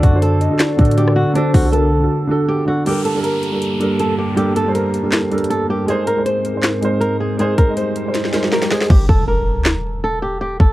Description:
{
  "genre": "hip hop, trap",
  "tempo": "159 BPM",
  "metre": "4/4",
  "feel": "half-time",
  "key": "G minor",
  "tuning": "A4 = 440 Hz",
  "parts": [
    { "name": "flamenco guitar", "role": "melody", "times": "0.0-10.7 s", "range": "D4 to C5", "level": "-21 LUFS", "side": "equal", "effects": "low-pass filter, tape echo" },
    { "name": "gliding portamento lead", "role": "second line", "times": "0.0-2.5 s", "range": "A4 to Eb5", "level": "-24 LUFS", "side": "left 4 dB", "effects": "chorus, tape echo" },
    { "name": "dark concert grand piano", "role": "accompaniment", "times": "0.0-8.9 s", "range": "D3 to Eb5", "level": "-19 LUFS", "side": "right 2 dB", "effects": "low-pass filter" },
    { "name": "dark analog pad", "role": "sustained chords", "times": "0.0-8.9 s", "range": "G2 to A5", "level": "-24 LUFS", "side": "equal", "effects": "chorus" },
    { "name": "clean 808-style bass", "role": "bass", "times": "0.0-2.1, 8.9-10.7 s", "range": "G1 to A2", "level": "-17 LUFS", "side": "equal", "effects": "none" },
    { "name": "trap drum kit", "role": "drums", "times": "0.0-10.7 s", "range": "crash cymbal, handclaps, hi-hat, kick drum, rim click, snare drum", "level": "-15 LUFS", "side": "equal", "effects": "none" },
    { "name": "downlifter, swell and impact", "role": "sound effects", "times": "2.9-10.4 s", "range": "none", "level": "-25 LUFS", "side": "equal", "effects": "none" }
  ],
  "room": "little or no reverb",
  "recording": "dark, warm production",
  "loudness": "-14 LUFS",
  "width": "side -16 dB against mid",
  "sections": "0.0-2.9 A section; 2.9-8.9 B section; 8.9-10.7 C section",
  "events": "break 2.1-2.9; swell 7.8-8.9; drum fill 8.1-8.9; hi-hats muted 8.9-10.7; impact 8.9-10.4",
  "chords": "0.0 D; 2.9 Gmadd9; 5.9 Abadd9; 8.9 Gm",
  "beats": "0.22 0.60 0.98 | 1.35 1.73 2.11 2.49 | 2.86 3.24 3.62 4.00 | 4.37 4.75 5.13 5.50 | 5.88 6.26 6.64 7.01 | 7.39 7.77 8.15 8.52 | 8.90 9.28 9.66 10.03 | 10.41"
}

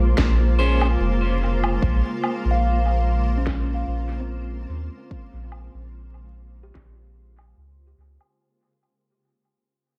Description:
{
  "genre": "ambient dub",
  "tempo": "73 BPM",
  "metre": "4/4",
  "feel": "swing 54% on 16ths",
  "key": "Bb dorian",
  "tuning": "A4 = 440 Hz",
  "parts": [
    { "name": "granular cloud pad", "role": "sustained chords", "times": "0.0-8.4 s", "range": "Db3 to C5", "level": "-30 LUFS", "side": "equal", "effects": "built-in reverb" },
    { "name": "soft dub sub bass", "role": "bass", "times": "0.0-8.2 s", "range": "F1 to Eb2", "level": "-24 LUFS", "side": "equal", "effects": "tube saturation" },
    { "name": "electronic kick drum", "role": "drums", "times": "0.2-6.9 s", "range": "none", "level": "-29 LUFS", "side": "equal", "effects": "none" },
    { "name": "electronic snare drum and woodblock", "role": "drums", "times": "0.2-8.4 s", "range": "none", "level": "-32 LUFS", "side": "equal", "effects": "low-pass filter on perc, low-pass filter on snare, low-pass filter on room, dub echo" },
    { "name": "electric guitar at the edge of break-up", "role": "stabs", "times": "0.6-0.9 s", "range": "Db4 to C5", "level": "-31 LUFS", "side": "equal", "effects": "dub echo" },
    { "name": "kalimba", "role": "arpeggios", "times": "2.5-8.9 s", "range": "C4 to F5", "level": "-33 LUFS", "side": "equal", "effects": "low-pass filter, tape echo" }
  ],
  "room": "light reverb, digital ambience",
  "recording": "vinyl crackle",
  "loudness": "-22 LUFS",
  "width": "mono",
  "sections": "0.0-8.4 A section",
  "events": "fade-out 0.0-8.4; filter sweep on drum 0.0-8.4",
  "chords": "0.0 Bbm9",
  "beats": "0.17 1.00 | 1.82 2.64 3.46 4.29 | 5.11 5.93 6.75 7.57"
}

